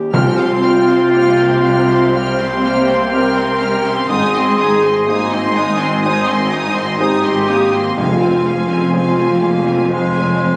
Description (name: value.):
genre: cinematic, emotional film score for orchestra.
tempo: 62 BPM.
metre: 4/4.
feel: rubato.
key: unclear.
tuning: A4 = 440 Hz.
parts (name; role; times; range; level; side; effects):
clear baby grand piano; accompaniment; 0.0-10.6 s; C2 to F5; -29 LUFS; equal; none.
dark French horn section; sustained chords; 0.0-10.6 s; Db4 to Db5; -19 LUFS; equal; none.
clear studio violin section; melody; 0.1-10.6 s; F5 to F6; -26 LUFS; equal; none.
rich studio violin section; second line; 0.1-10.6 s; Eb5 to Ab5; -32 LUFS; equal; none.
rich studio viola section; accompaniment; 0.1-10.6 s; G3 to Eb4; -27 LUFS; equal; none.
rich studio cello section; bass; 0.1-10.6 s; F2 to C3; -23 LUFS; equal; none.
rich symphonic double bass section; bass; 0.1-10.6 s; F1 to C2; -25 LUFS; equal; none.
timpani; percussion; 0.1-1.6, 8.0-9.4 s; F2 to C3; -23 LUFS; equal; none.
clear clarinet; second line; 0.2-10.6 s; G3 to Eb4; -27 LUFS; equal; none.
concert flute; second line; 0.2-10.6 s; C6; -26 LUFS; equal; none.
mellow cor anglais; second line; 0.2-10.6 s; G5 to Ab5; -29 LUFS; equal; none.
room: wet recital hall reverb, RT60 1.4 s.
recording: recorded on a phone in the room, club reverb, compression.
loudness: -15 LUFS.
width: mono.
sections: 0.1-10.6 A section.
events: none.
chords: 0.1 Csus4; 4.1 Ab; 8.0 Fm.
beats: | 0.14 1.13 2.13 3.12 | 4.09 5.07 6.04 7.00 | 7.97 8.93 9.90.